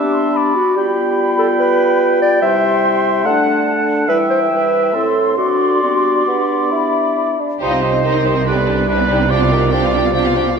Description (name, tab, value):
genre	quick classical-period movement for symphony orchestra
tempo	142 BPM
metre	4/4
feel	rubato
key	G major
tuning	A4 = 440 Hz
part	large flute ensemble	second line	0.0-10.6 s	D5 to D6	-21 LUFS	left 2 dB	none
part	mellow clarinet	second line	0.0-10.6 s	D4 to F#5	-18 LUFS	equal	none
part	warm oboe	second line	0.0-10.6 s	B4 to G5	-21 LUFS	right 3 dB	none
part	mellow bassoon	accompaniment	0.0-10.6 s	A2 to E4	-20 LUFS	right 1 dB	none
part	mellow French horn section	sustained chords	0.0-10.6 s	G3 to G4	-22 LUFS	left 3 dB	none
part	warm studio violin section	melody	7.6-10.6 s	B4 to G5	-26 LUFS	left 3 dB	none
part	warm studio violin section	second line	7.6-10.6 s	Eb4 to B4	-26 LUFS	left 2 dB	none
part	warm studio viola section	accompaniment	7.6-10.6 s	B3 to Eb4	-23 LUFS	right 2 dB	none
part	warm studio cello section	bass	7.6-10.6 s	C3	-20 LUFS	right 3 dB	none
part	warm studio double bass section	bass	7.6-10.6 s	C2	-22 LUFS	right 4 dB	none
room	wet concert hall reverb, RT60 2.0 s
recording	minimal, uncompressed stereo recording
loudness	-13 LUFS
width	side -6 dB against mid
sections	0.0-7.6 A section; 7.6-10.6 B section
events	none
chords	0.0 G; 0.8 G7; 2.4 C; 3.3 D; 4.1 Em; 4.9 Am; 5.4 D7; 5.8 G; 7.6 Cm; 8.5 G/C; 9.3 G7/C